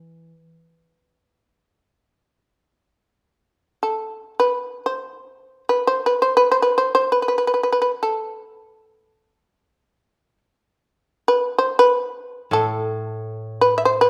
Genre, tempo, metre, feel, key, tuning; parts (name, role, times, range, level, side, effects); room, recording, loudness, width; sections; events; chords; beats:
japanese traditional, Japanese chamber music; free time; A4 = 440 Hz
koto; accompaniment; 0.0-0.3, 12.5-14.1 s; A2 to E3; -30 LUFS; equal
shamisen; melody; 3.8-14.1 s; A4 to E5; -19 LUFS; equal
moderate recital hall reverb, RT60 1.4 s; -20 LUFS; mono
0.0-3.1 A section; 3.1-14.1 A section
slowing down 11.2-14.1
free time